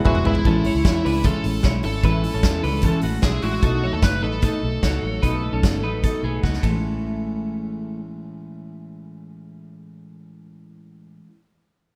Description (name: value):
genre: jangly indie pop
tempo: 150 BPM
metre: 4/4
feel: straight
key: A major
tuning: A4 = 440 Hz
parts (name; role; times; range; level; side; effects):
- picked steel-string acoustic guitar; accompaniment; 0.0-11.4 s; A2 to E4; -30 LUFS; equal; none
- reed electric piano; accompaniment; 0.0-0.5 s; E4 to D5; -28 LUFS; equal; fast tremolo
- twelve-string electric guitar; arpeggios; 0.0-8.0 s; G#3 to C#5; -31 LUFS; equal; spring reverb
- vintage muted fingered electric bass; bass; 0.0-11.2 s; E1 to E2; -28 LUFS; equal; none
- big rock drum kit; drums; 0.0-6.7 s; hi-hat, kick drum, ride cymbal, snare drum, toms; -24 LUFS; equal; none
- bluesy overdriven lead guitar; melody; 0.1-6.4 s; E4 to B4; -30 LUFS; equal; distortion, tube saturation
room: light reverb, small room ambience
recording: rough home demo mix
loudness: -21 LUFS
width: mono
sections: 0.4-6.8 A section; 6.8-10.0 B section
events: drum fill 0.0-0.4, 6.4-6.8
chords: 0.4 Amaj7; 3.6 B7; 6.6 Amaj7